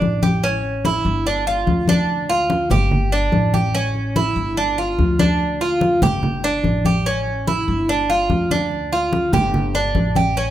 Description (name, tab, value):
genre	latin, Cuban son and guajira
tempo	145 BPM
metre	4/4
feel	straight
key	unclear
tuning	A4 = 439 Hz
part	Cuban tres	arpeggios	0.0-10.5 s	C#4 to G4	-19 LUFS	right 2 dB	none
part	upright bass	bass	0.0-10.5 s	G1 to D2	-23 LUFS	equal	none
part	congas	percussion	0.0-10.5 s	none	-21 LUFS	left 2 dB	none
room	moderate large studio reverb, RT60 1.1 s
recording	minimal, uncompressed stereo recording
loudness	-16 LUFS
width	side -12 dB against mid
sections	0.0-10.5 A section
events	drum fill 5.2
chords	0.4 A7; 1.3 G5; 3.7 A7; 4.6 G5; 7.1 A7; 7.9 G5